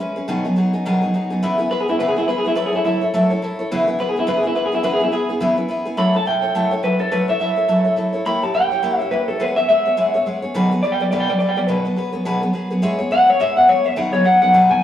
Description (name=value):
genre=rock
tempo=210 BPM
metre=4/4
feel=swing 58% on 8ths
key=E major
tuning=A4 = 440 Hz
part: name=picked steel-string acoustic guitar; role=accompaniment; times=0.0-14.8 s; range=B2 to C#5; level=-19 LUFS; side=equal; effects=none
part: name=electric guitar through a small old amp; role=melody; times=1.7-14.8 s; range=E4 to B5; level=-17 LUFS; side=left 1 dB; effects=none
room=wet stone room reverb, RT60 1.2 s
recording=rough rehearsal-room recording, tube saturation, small room ambience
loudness=-16 LUFS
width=side -11 dB against mid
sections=0.0-1.4 A section; 1.4-14.8 B section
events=clean electric guitar solo 1.4-14.8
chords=0.3 B6; 1.4 E6; 2.6 A6; 3.7 E6; 6.0 A6; 8.3 A#dim7; 9.4 E6; 10.5 B6; 12.8 E6; 14.0 B6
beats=0.00 | 0.28 0.57 0.86 1.14 | 1.43 1.71 2.00 2.28 | 2.57 2.85 3.14 3.42 | 3.71 3.99 4.28 4.56 | 4.85 5.13 5.42 5.70 | 5.99 6.27 6.55 6.84 | 7.12 7.41 7.69 7.98 | 8.26 8.55 8.83 9.12 | 9.40 9.69 9.97 10.26 | 10.55 10.83 11.12 11.40 | 11.69 11.97 12.26 12.54 | 12.83 13.11 13.40 13.68 | 13.97 14.25 14.54 14.82